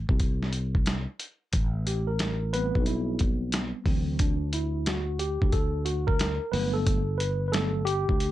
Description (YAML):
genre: hip hop, jazz-hop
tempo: 90 BPM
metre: 4/4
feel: swing 64% on 16ths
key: A dorian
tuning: A4 = 436 Hz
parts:
  - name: sustaining fretless electric bass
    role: bass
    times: 0.0-8.3 s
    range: G1 to D2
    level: -29 LUFS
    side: equal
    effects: lush chorus
  - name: dusty soul sampler-style drum kit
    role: drums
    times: 0.1-8.3 s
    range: hi-hat, kick drum, snare drum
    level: -27 LUFS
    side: equal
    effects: none
  - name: mellow tine electric piano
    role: accompaniment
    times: 1.9-8.3 s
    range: E3 to B4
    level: -30 LUFS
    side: equal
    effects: medium stereo tremolo
room: little or no reverb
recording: dry, gritty hardware recording, cassette tape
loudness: -25 LUFS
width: side -14 dB against mid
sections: 0.0-1.5 A section; 1.5-8.3 B section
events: tine electric piano solo 1.5-8.3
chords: 0.0 N.C.; 1.5 Am9; 3.9 D9; 6.5 Gmaj9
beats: 0.20 0.87 | 1.54 2.20 2.87 3.54 | 4.20 4.87 5.54 6.20 | 6.87 7.54 8.20